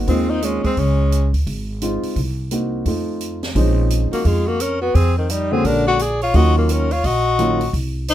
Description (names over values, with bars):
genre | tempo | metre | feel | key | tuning
jazz, small-group swing and bop | 172 BPM | 4/4 | swing 63% on 8ths | Db major, Bb minor from 3.6 s | A4 = 438 Hz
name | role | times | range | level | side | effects
warm upright piano | accompaniment | 0.0-7.6 s | D3 to Gb4 | -22 LUFS | equal | none
upright bass | bass | 0.0-8.1 s | Ab1 to F2 | -19 LUFS | equal | none
breathy tenor saxophone | melody | 0.1-1.3, 4.1-8.1 s | Eb3 to Ab4 | -20 LUFS | left 4 dB | none
clear alto saxophone | second line | 0.1-1.3, 4.1-8.1 s | Ab3 to Eb5 | -25 LUFS | right 6 dB | none
open jazz drum kit | drums | 0.1-8.1 s | hi-hat, kick drum, snare drum | -29 LUFS | right 1 dB | none
room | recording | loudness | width
light reverb | close, detailed microphones | -16 LUFS | side -12 dB against mid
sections
0.0-3.6 A section; 3.6-8.1 B section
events
break 3.2-3.6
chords
0.0 Ab; 0.8 Dbmaj7; 2.2 Cm7b5; 2.9 F7; 3.6 Bbm11; 4.9 Fm; 5.6 Bb7alt; 6.3 Ebm9